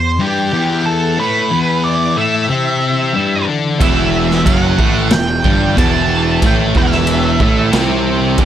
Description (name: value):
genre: quiet-loud alternative rock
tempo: 92 BPM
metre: 4/4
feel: straight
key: E minor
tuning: A4 = 439 Hz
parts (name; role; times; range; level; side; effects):
- octave-fuzz lead guitar; melody; 0.0-7.7 s; G4 to A5; -18 LUFS; right 3 dB; distortion
- string machine, cellos; sustained chords; 0.0-8.4 s; E3 to E4; -27 LUFS; right 3 dB; none
- thick fuzz guitar; riff; 0.0-8.4 s; E2 to D4; -16 LUFS; left 5 dB; distortion
- biting overdriven guitar; riff; 3.8-8.4 s; E2 to C4; -22 LUFS; right 3 dB; spring reverb
- thick fuzz guitar; riff; 3.8-8.4 s; E2 to C4; -20 LUFS; right 14 dB; distortion
- fuzz picked electric bass; bass; 3.8-8.4 s; E1 to C2; -18 LUFS; right 1 dB; overdrive
- raw garage drum kit; drums; 3.8-8.4 s; crash cymbal, kick drum, snare drum; -16 LUFS; right 1 dB; none
room: light reverb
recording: none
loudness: -12 LUFS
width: side -10 dB against mid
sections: 0.0-8.4 A section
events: none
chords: 0.0 Em